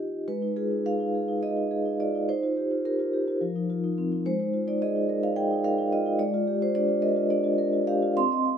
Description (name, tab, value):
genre	classical, contemporary piece for solo vibraphone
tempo	213 BPM (eighths)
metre	7/8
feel	rubato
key	unclear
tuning	A4 = 441 Hz
part	vibraphone with soft mallets	solo	0.0-8.6 s	F3 to C6	-24 LUFS	equal	none
room	moderate recital hall reverb, RT60 1.5 s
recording	close, detailed microphones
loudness	-24 LUFS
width	side -8 dB against mid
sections	0.3-8.6 A section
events	none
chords	0.3 Ab5; 2.3 Ebadd9; 3.4 F7sus4; 4.3 Absus2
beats	| 0.28 0.57 0.86 1.15 1.43 1.71 2.00 | 2.28 2.57 2.85 3.13 3.41 3.69 3.97 | 4.25 4.54 4.82 5.10 5.38 5.65 5.93 | 6.20 6.48 6.75 7.03 7.31 7.59 7.88 | 8.17 8.45